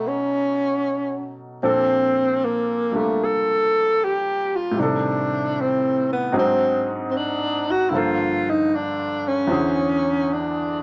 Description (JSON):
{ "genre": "jazz ballad", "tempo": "76 BPM", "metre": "4/4", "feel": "swing 66% on 8ths", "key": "unclear", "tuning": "A4 = 442 Hz", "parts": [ { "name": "breathy tenor saxophone", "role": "melody", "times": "0.0-10.8 s", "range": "A3 to A4", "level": "-23 LUFS", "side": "equal", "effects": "none" }, { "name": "clear baby grand piano", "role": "accompaniment", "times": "0.0-10.8 s", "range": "E2 to C5", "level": "-28 LUFS", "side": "equal", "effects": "none" } ], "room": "moderate studio reverb, RT60 0.5 s", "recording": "none", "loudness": "-22 LUFS", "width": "mono", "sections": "0.0-10.8 A section", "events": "none", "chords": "0.0 B9; 1.6 Bbmaj9; 4.8 Am7b5; 6.3 Ab7#11; 7.9 Gm11; 9.5 E7b13" }